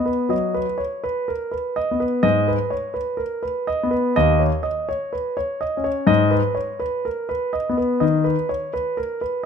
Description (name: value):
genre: classical, baroque-style suite movement for grand piano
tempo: 63 BPM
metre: 4/4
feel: rubato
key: unclear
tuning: A4 = 439 Hz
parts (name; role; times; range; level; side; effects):
- warm concert grand piano; solo; 0.0-9.5 s; D#2 to D#5; -19 LUFS; left 1 dB; none
room: light reverb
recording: close, detailed microphones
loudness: -19 LUFS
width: side -7 dB against mid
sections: 0.0-9.5 A section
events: none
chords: 0.0 B; 2.2 G#m; 4.2 Badd9/D#; 6.1 G#m (rootless)